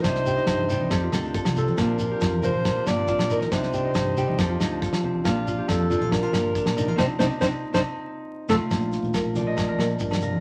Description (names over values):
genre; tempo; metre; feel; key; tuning
highlife guitar band; 139 BPM; 4/4; straight; Bb major; A4 = 440 Hz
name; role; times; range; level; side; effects
warm alto saxophone; melody; 0.0-8.6 s; F4 to D5; -29 LUFS; equal; none
nylon-string guitar; accompaniment; 0.0-10.4 s; Bb2 to Bb4; -31 LUFS; equal; none
Celtic harp; arpeggios; 0.0-10.4 s; A3 to Eb5; -32 LUFS; equal; none
fingered electric bass; bass; 0.0-10.3 s; G1 to F3; -32 LUFS; equal; none
damped 70s drum kit; drums; 0.0-10.2 s; kick drum, snare drum; -29 LUFS; equal; none
agogo bells; percussion; 0.0-10.2 s; none; -38 LUFS; equal; none
shekere; percussion; 0.0-10.3 s; none; -40 LUFS; equal; none
congas; percussion; 0.3-10.4 s; none; -35 LUFS; equal; none
room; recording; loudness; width
moderate studio reverb, RT60 0.8 s; vinyl crackle; -24 LUFS; mono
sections
0.0-8.7 A section; 8.7-10.4 B section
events
band accent 7.0-8.7; drum fill 8.2-8.7; harp solo 8.7-10.4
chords
0.0 Cmadd9; 0.9 F; 1.8 Bb; 3.5 Cmadd9; 4.4 F; 5.3 Bb; 7.0 Cmadd9; 7.8 F; 8.7 Bb